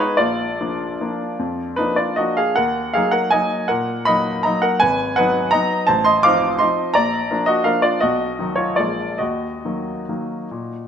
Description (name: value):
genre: classical, piano waltz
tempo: 133-178 BPM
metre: 3/4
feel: rubato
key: Eb minor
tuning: A4 = 440 Hz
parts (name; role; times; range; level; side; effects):
- clear grand piano; solo; 0.0-10.9 s; Ab1 to D6; -17 LUFS; equal; none
room: moderate recital hall reverb, RT60 1.4 s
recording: none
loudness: -17 LUFS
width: side -8 dB against mid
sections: 0.0-10.9 A section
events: none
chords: 0.2 Bb; 2.6 Ebm; 4.8 Abm7; 5.9 F7/A; 7.0 Bb; 8.0 B; 8.8 Bb7; 9.2 Ebm